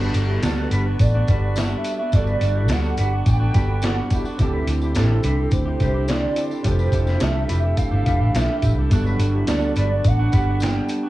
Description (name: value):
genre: indie pop, bedroom pop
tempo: 106 BPM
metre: 4/4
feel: straight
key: G major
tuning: A4 = 442 Hz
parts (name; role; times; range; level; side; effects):
- mellow electric guitar; second line; 0.0-10.6 s; E4 to B4; -33 LUFS; equal; analog chorus, plate reverb, analog delay
- electric guitar at the edge of break-up; accompaniment; 0.0-11.1 s; D3 to G4; -29 LUFS; left 2 dB; lush chorus, vibrato effect
- warm analog keys; accompaniment; 0.0-11.1 s; E3 to A4; -32 LUFS; right 3 dB; chorus
- warbly tape-like pad; sustained chords; 0.9-11.1 s; D4 to E6; -30 LUFS; right 2 dB; chorus, built-in reverb
- vintage muted fingered electric bass; bass; 0.0-10.8 s; F1 to D2; -20 LUFS; equal; none
- tambourine; percussion; 0.0-11.0 s; none; -42 LUFS; left 6 dB; none
- dusty soul sampler-style drum kit; drums; 0.1-11.0 s; hi-hat, kick drum, snare drum; -23 LUFS; equal; none
- warbly nostalgic lead; melody; 0.4-11.1 s; A4 to G5; -27 LUFS; right 2 dB; ensemble chorus, cassette tape, analog delay
room: little or no reverb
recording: home recording on cassette, small room ambience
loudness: -18 LUFS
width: side -16 dB against mid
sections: 0.0-11.1 A section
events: none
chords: 0.0 Gmaj7; 4.4 D9sus4; 6.7 Fmaj9; 8.9 Gmaj7